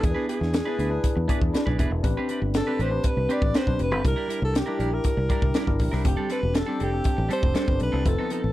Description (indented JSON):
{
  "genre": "polished 1980s jazz-funk pop",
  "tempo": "120 BPM",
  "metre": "4/4",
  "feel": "straight",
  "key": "unclear",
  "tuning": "A4 = 440 Hz",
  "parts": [
    { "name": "clear alto saxophone", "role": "melody", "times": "0.0-8.5 s", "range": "G4 to D5", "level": "-29 LUFS", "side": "equal", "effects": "none" },
    { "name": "tine electric piano", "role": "accompaniment", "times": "0.0-8.5 s", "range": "C4 to B5", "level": "-30 LUFS", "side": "left 2 dB", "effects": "overdrive, analog chorus" },
    { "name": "clean electric guitar", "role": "riff", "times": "0.0-8.5 s", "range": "F3 to B4", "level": "-32 LUFS", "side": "right 4 dB", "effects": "lush chorus" },
    { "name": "fingered electric bass", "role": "bass", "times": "0.0-8.5 s", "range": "E1 to E2", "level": "-26 LUFS", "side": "equal", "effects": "none" },
    { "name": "crisp fusion drum kit", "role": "drums", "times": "0.0-8.4 s", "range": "hi-hat, kick drum, snare drum", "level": "-25 LUFS", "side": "equal", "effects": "none" }
  ],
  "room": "little or no reverb",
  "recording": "none",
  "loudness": "-22 LUFS",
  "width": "side -15 dB against mid",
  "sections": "0.0-8.5 A section",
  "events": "none",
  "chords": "0.0 E7; 2.0 Am11; 4.0 C9; 6.1 F69",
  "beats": "| 0.04 0.54 1.04 1.54 | 2.04 2.54 3.04 3.54 | 4.05 4.55 5.05 5.55 | 6.05 6.55 7.05 7.55 | 8.06"
}